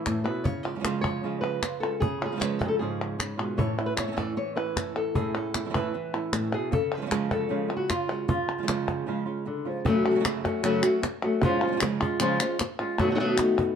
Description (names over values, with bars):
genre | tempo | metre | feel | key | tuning
flamenco | 153 BPM | 4/4 | straight | unclear | A4 = 442 Hz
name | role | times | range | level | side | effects
flamenco guitar | melody | 0.0-13.8 s | F#2 to D5 | -27 LUFS | left 2 dB | none
flamenco guitar | stabs | 0.0-13.8 s | F#2 to F#4 | -31 LUFS | right 6 dB | none
cajon | percussion | 0.1-13.8 s | none | -30 LUFS | left 1 dB | none
palmas hand claps | percussion | 0.1-13.8 s | none | -32 LUFS | left 2 dB | none
room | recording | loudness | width
moderate studio reverb, RT60 0.7 s | dark, warm production | -25 LUFS | side -7 dB against mid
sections
0.0-9.9 A section; 9.9-13.8 B section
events
break 9.1-9.9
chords
0.5 C#; 3.6 A; 6.7 C#; 9.9 F#m; 11.4 C#; 13.0 B7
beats
0.06 | 0.45 0.84 1.24 1.63 | 2.02 2.41 2.80 3.19 | 3.59 3.98 4.37 4.76 | 5.15 5.54 5.94 6.33 | 6.72 7.11 7.50 7.90 | 8.29 8.68 9.07 9.46 | 9.86 10.25 10.64 11.03 | 11.42 11.81 12.20 12.60 | 12.99 13.38